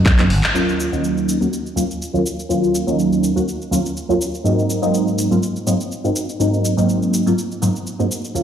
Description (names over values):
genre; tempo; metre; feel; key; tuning
filtered disco house; 123 BPM; 4/4; swing 55% on 16ths; Eb dorian; A4 = 439 Hz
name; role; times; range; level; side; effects
house drum kit; drums; 0.1-8.4 s; handclaps, hi-hat, shaker; -25 LUFS; equal; sidechain pumping on hats, sidechain pumping on perc
funky polysynth comp; accompaniment; 0.2-8.4 s; Eb2 to Gb4; -17 LUFS; equal; chorus, phaser, sidechain pumping, low-pass filter
room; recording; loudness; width
wet plate reverb, RT60 2.2 s; played on a big sound system in a bare room, large studio reverb; -16 LUFS; side -9 dB against mid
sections
0.5-8.4 A section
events
drum fill 0.2-0.5; band accent 0.4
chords
0.0 Ab7(no3); 0.5 Ebm9; 4.4 Ab9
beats
0.06 | 0.54 1.03 1.52 2.01 | 2.50 2.98 3.47 3.96 | 4.45 4.93 5.42 5.91 | 6.40 6.88 7.37 7.86 | 8.35